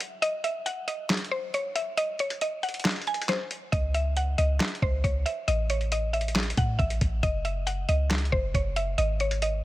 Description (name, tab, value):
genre	hip hop, trap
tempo	137 BPM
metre	4/4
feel	half-time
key	C# harmonic minor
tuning	A4 = 440 Hz
part	lo-fi sampler-style drum kit	drums	0.0-9.5 s	handclaps, hi-hat, kick drum, snare drum	-28 LUFS	equal	none
part	mallet-like synth pluck	melody	0.2-9.6 s	B#4 to G#5	-29 LUFS	equal	chorus, low-pass filter
part	clean 808-style bass	bass	3.7-9.6 s	F#1 to A2	-27 LUFS	equal	none
room	digital ambience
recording	none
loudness	-25 LUFS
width	side -16 dB against mid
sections	0.0-9.6 A section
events	break 0.0-3.7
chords	0.0 N.C.; 3.7 C#madd9; 5.5 A5; 7.2 F#5; 9.0 G#5